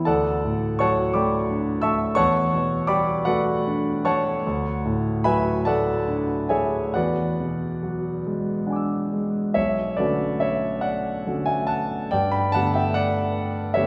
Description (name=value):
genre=classical, impressionist solo piano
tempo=44-60 BPM (dotted quarters)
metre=6/8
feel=rubato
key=E dorian, B dorian from 4.4 s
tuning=A4 = 438 Hz
part: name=clear concert grand piano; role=solo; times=0.0-13.9 s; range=B1 to E6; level=-23 LUFS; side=equal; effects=none
room=wet concert hall reverb, RT60 1.9 s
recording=heard from further back in the room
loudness=-23 LUFS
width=mono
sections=0.0-9.6 A section; 9.6-13.9 B section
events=none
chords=0.1 Dadd9; 2.2 Em11; 4.4 Dmaj7; 6.9 E9; 9.6 Bm9; 12.1 Gmaj9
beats=| 0.07 1.15 | 2.17 3.25 | 4.44 5.66 | 6.94 8.24 | 9.56 10.85 | 12.11 13.37